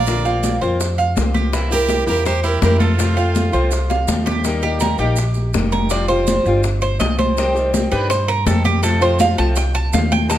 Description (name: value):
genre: latin, Cuban son and guajira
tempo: 164 BPM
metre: 4/4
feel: straight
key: unclear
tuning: A4 = 443 Hz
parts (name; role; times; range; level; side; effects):
- nylon-string guitar; melody; 0.0-4.1 s; A4 to F5; -22 LUFS; right 2 dB; none
- brilliant trumpet; second line; 0.0-4.0 s; F4 to D5; -26 LUFS; right 7 dB; none
- picked old ladder-braced acoustic guitar; accompaniment; 0.0-10.4 s; C3 to G4; -24 LUFS; left 3 dB; none
- Cuban tres; arpeggios; 0.0-10.4 s; E4 to A5; -21 LUFS; right 2 dB; none
- upright bass; bass; 0.0-10.4 s; F1 to G2; -19 LUFS; equal; none
- bongos; percussion; 0.1-10.4 s; none; -28 LUFS; left 8 dB; none
- congas; percussion; 0.1-10.4 s; none; -24 LUFS; left 2 dB; none
- maracas; percussion; 0.1-10.4 s; none; -32 LUFS; right 6 dB; none
room: moderate recital hall reverb, RT60 1.7 s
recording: close, detailed microphones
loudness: -15 LUFS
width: side -12 dB against mid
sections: 0.0-4.5 A section; 4.5-10.4 B section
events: drum fill 3.9-4.5; Cuban tres solo 4.5-10.4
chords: 0.1 Bbadd9; 1.5 C7; 3.0 F; 4.5 Eb; 5.9 Fsus2; 7.4 Cm; 8.8 F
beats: | 0.07 0.43 0.80 1.16 | 1.53 1.89 2.26 2.62 | 2.99 3.35 3.72 4.09 | 4.45 4.82 5.18 5.55 | 5.91 6.28 6.64 7.01 | 7.38 7.74 8.11 8.47 | 8.84 9.21 9.57 9.94 | 10.30